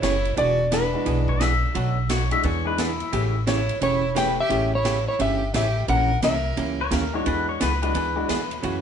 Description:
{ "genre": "country, western swing", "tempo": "174 BPM", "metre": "4/4", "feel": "swing 64% on 8ths", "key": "unclear", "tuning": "A4 = 440 Hz", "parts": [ { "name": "clean lap steel guitar", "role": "melody", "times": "0.0-1.4, 3.5-6.9 s", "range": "B4 to G5", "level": "-24 LUFS", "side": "left 1 dB", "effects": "none" }, { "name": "clear fiddle", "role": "second line", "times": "0.0-1.4, 3.5-6.9 s", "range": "D4 to B4", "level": "-32 LUFS", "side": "right 3 dB", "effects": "none" }, { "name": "hollow-body jazz guitar", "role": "accompaniment", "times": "0.0-8.8 s", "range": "B2 to A#4", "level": "-28 LUFS", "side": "right 4 dB", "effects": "none" }, { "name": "upright bass", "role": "bass", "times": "0.0-8.8 s", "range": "E1 to F#2", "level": "-25 LUFS", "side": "equal", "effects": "none" }, { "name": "swinging big-band drum kit", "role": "drums", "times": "0.0-8.7 s", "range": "hi-hat, kick drum, ride cymbal, snare drum", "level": "-31 LUFS", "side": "equal", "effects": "none" }, { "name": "bright upright piano", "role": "accompaniment", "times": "0.9-4.7, 7.1-8.3 s", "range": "G#3 to G#4", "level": "-30 LUFS", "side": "left 3 dB", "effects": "none" }, { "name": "pedal steel guitar", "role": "second line", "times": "1.3-3.4, 6.8-8.8 s", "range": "E4 to E5", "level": "-27 LUFS", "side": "left 6 dB", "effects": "none" } ], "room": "moderate small room reverb, RT60 0.5 s", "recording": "band playing live in one room, nothing above 10.6 kHz", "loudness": "-20 LUFS", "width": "side -8 dB against mid", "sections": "0.0-8.8 A section", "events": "none", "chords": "0.4 E9; 1.8 Bm7; 2.4 E7; 3.1 A9; 5.9 A#dim7; 7.3 E9" }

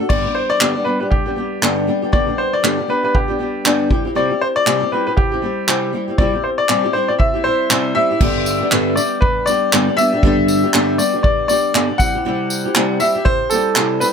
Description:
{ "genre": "acoustic pop", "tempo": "119 BPM", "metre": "4/4", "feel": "swing 60% on 16ths", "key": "G major", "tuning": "A4 = 440 Hz", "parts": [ { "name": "flamenco guitar", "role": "accompaniment", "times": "0.0-14.1 s", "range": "G2 to G4", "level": "-18 LUFS", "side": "left 1 dB", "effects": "double-tracked left and right" }, { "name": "bright upright piano", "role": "melody", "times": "0.1-14.1 s", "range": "G4 to F#5", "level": "-18 LUFS", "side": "left 1 dB", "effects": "none" }, { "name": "natural country drum kit", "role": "drums", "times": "0.1-14.1 s", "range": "crash cymbal, handclaps, kick drum, tambourine", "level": "-18 LUFS", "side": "right 1 dB", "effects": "none" } ], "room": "small room ambience", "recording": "none", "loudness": "-14 LUFS", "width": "side -6 dB against mid", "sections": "0.1-8.2 A section; 8.2-14.1 B section", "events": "none", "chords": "0.1 G; 3.9 C; 8.2 G; 12.0 C" }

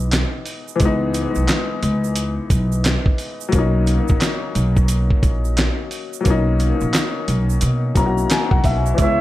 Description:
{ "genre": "hip hop, boom-bap hip-hop", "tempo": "88 BPM", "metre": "4/4", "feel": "swing 62% on 16ths", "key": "unclear", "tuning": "A4 = 444 Hz", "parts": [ { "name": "warm upright piano", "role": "accompaniment", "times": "0.0-9.2 s", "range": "E3 to A#5", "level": "-23 LUFS", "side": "left 4 dB", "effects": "high-pass filter, low-pass filter, analog delay" }, { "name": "upright bass", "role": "bass", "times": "0.0-9.2 s", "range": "A#1 to B2", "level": "-19 LUFS", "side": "equal", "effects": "none" }, { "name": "dusty soul sampler-style drum kit", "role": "drums", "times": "0.1-9.2 s", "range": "handclaps, hi-hat, kick drum, snare drum", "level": "-19 LUFS", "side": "equal", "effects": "vintage 12-bit sampler grit" }, { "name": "tube shaker", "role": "percussion", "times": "0.1-9.2 s", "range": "none", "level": "-35 LUFS", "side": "right 17 dB", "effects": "none" }, { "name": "silver concert flute", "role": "melody", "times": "9.0-9.2 s", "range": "E5", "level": "-18 LUFS", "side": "right 2 dB", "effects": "high-pass filter, low-pass filter" }, { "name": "clear horn section", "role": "stabs", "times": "9.0-9.2 s", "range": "G#3 to C#5", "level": "-25 LUFS", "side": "right 14 dB", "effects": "high-pass filter, low-pass filter" } ], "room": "studio reverb", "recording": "echo-heavy mix", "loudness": "-16 LUFS", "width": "side -15 dB against mid", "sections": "0.0-9.2 A section", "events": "break 0.0-3.5", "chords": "0.0 C#m7; 3.5 Bmaj7" }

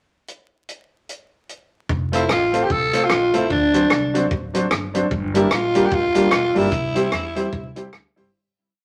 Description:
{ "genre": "ska", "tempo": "149 BPM", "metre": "4/4", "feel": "swing 59% on 8ths", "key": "F major", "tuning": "A4 = 442 Hz", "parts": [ { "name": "compact cocktail drum kit", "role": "drums", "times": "0.3-8.2 s", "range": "hi-hat, kick drum, rim click", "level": "-27 LUFS", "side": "equal", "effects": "none" }, { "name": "upright bass", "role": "bass", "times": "1.9-8.3 s", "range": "E1 to E2", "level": "-31 LUFS", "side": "equal", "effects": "none" }, { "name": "growling tenor saxophone", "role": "melody", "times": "2.1-7.9 s", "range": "D4 to A4", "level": "-22 LUFS", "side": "equal", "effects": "none" }, { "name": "mellow electric guitar", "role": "accompaniment", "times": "2.1-8.3 s", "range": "F#3 to F4", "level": "-28 LUFS", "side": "equal", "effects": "dub echo" }, { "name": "warm upright piano", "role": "stabs", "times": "2.1-8.3 s", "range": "D4 to C5", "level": "-25 LUFS", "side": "equal", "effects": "none" } ], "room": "wet club reverb, RT60 0.7 s", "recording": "vinyl crackle", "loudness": "-19 LUFS", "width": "mono", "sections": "0.3-1.9 pickup bar; 1.9-8.3 A section", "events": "fade-out 6.7-8.3", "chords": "0.3 N.C.; 1.9 F; 3.5 D7; 5.1 Gm; 6.7 C" }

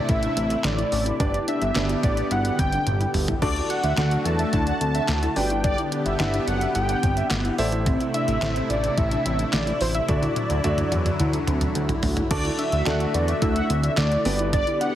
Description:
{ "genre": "synth-pop", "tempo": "108 BPM", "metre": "4/4", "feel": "straight", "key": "D mixolydian", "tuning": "A4 = 440 Hz", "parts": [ { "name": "wide unison lead", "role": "melody", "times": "0.0-14.9 s", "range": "C5 to A5", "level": "-27 LUFS", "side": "equal", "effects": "tape echo" }, { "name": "warm concert grand piano", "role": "accompaniment", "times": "0.0-14.9 s", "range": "A3 to E5", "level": "-30 LUFS", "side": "right 1 dB", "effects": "none" }, { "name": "lush unison pad", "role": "sustained chords", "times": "0.0-14.9 s", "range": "C3 to G4", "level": "-29 LUFS", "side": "equal", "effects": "chorus, phaser" }, { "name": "wide unison pluck", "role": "arpeggios", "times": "0.1-14.9 s", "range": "C4 to F#4", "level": "-32 LUFS", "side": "left 2 dB", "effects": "ensemble chorus, tape echo" }, { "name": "fat analog bass", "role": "bass", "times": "0.1-14.6 s", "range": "F#1 to E2", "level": "-25 LUFS", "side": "equal", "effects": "none" }, { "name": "detuned 8-bit digital drum machine", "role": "drums", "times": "0.1-14.9 s", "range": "crash cymbal, handclaps, hi-hat, kick drum, snare drum, toms", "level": "-27 LUFS", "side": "equal", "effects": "none" }, { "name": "mellow synth brass", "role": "second line", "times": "3.4-7.7, 12.3-14.7 s", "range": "D5 to F#5", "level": "-31 LUFS", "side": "right 1 dB", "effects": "chorus, phaser, tape echo" } ], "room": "moderate plate reverb, RT60 1.9 s", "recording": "heavily compressed radio sound", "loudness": "-20 LUFS", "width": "side -12 dB against mid", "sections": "0.0-12.3 A section; 12.3-14.9 A section", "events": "drum fill 2.9-3.4, 10.1-12.3", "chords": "0.0 Am; 1.2 G; 3.4 D; 5.4 G; 7.6 Am; 10.1 Dadd9; 14.3 G" }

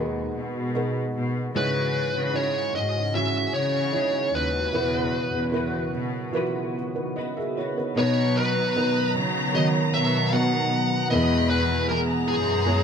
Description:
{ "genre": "pop", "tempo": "76 BPM", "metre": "4/4", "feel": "straight", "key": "B major", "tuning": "A4 = 440 Hz", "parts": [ { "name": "felt-muted upright piano", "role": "accompaniment", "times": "0.0-12.8 s", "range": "G#2 to E5", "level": "-28 LUFS", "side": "right 1 dB", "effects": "none" }, { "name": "warm analog pad", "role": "sustained chords", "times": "0.0-12.8 s", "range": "C#3 to B4", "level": "-33 LUFS", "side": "right 1 dB", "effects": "chorus" }, { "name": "rich chamber cello section", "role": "bass", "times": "0.0-12.8 s", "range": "D#2 to C#3", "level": "-27 LUFS", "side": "left 1 dB", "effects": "none" }, { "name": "direct-recorded clean electric guitar", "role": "arpeggios", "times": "1.5-12.8 s", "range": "B2 to B4", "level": "-34 LUFS", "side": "left 3 dB", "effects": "ensemble chorus" }, { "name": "smooth overdriven lead guitar", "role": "melody", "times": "1.6-12.8 s", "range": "G#4 to F#5", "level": "-26 LUFS", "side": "left 1 dB", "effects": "none" }, { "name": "warm studio violin section", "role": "second line", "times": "8.0-12.8 s", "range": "A#5 to B5", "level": "-29 LUFS", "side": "equal", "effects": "none" } ], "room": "moderate studio reverb, RT60 0.5 s", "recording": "none", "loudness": "-22 LUFS", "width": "side -7 dB against mid", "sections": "0.0-8.0 A section; 8.0-12.8 B section", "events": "break 6.3-8.0", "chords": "0.0 G#m; 1.6 C#madd9; 4.7 Esus2; 8.0 B; 11.1 E" }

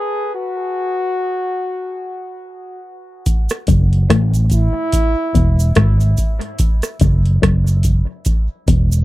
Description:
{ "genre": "dub reggae", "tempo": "72 BPM", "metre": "4/4", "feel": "swing 57% on 16ths", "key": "F# minor", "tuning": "A4 = 439 Hz", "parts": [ { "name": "mellow flugelhorn", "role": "melody", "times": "0.0-5.7 s", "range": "E4 to G#4", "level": "-23 LUFS", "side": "equal", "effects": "low-pass filter, dub echo" }, { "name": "booming analog drum machine", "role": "drums", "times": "3.3-8.9 s", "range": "hi-hat, kick drum, rim click", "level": "-16 LUFS", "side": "equal", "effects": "none" }, { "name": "cabasa", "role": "percussion", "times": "3.3-9.0 s", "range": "none", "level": "-30 LUFS", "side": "right 7 dB", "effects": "none" }, { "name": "electric guitar with an envelope filter", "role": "riff", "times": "3.7-8.9 s", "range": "E2 to A2", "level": "-22 LUFS", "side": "left 6 dB", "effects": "spring reverb, dub echo" }, { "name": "vintage muted fingered electric bass", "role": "bass", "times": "3.7-9.0 s", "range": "E1 to A1", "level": "-13 LUFS", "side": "equal", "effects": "none" } ], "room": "little or no reverb", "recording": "dry, close 1970s-style studio recording", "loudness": "-14 LUFS", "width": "side -17 dB against mid", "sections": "0.0-3.3 A section; 3.3-9.0 B section", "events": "break 0.0-3.3; filter sweep on flugelhorn 0.0-3.3", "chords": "0.0 N.C.; 3.3 F#m; 4.9 E; 6.6 N.C.; 8.3 E5" }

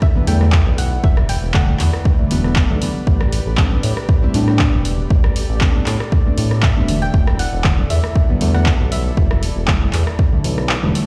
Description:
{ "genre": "deep house", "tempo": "118 BPM", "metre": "4/4", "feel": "swing 53% on 16ths", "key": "unclear", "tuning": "A4 = 439 Hz", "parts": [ { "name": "soft round pluck", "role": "melody", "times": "0.0-2.8, 6.6-9.4 s", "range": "E5 to G5", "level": "-30 LUFS", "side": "equal", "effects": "subtle chorus, dub echo" }, { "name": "warm analog pad", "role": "sustained chords", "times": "0.0-11.1 s", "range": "E4 to D5", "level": "-33 LUFS", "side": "equal", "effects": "chorus, sidechain pumping" }, { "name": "electronic kick drum", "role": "drums", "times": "0.0-10.3 s", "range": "none", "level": "-17 LUFS", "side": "equal", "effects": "overdrive" }, { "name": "deep mellow chord stab", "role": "stabs", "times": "0.1-11.1 s", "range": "D3 to E4", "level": "-25 LUFS", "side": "equal", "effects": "lush chorus, sidechain pumping, dub echo" }, { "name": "smooth synth bass", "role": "bass", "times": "0.3-10.9 s", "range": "E1 to A2", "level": "-21 LUFS", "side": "equal", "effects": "sidechain pumping" }, { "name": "punchy analog drum machine", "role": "drums", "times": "0.3-11.1 s", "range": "handclaps, hi-hat, rim click", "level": "-26 LUFS", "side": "equal", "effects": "none" } ], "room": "little or no reverb", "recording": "played on a big sound system in a bare room, large studio reverb", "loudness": "-16 LUFS", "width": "mono", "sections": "0.0-11.1 A section", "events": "kick drops out 10.7-11.1", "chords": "0.0 Em11; 3.1 Am11; 6.9 Em11" }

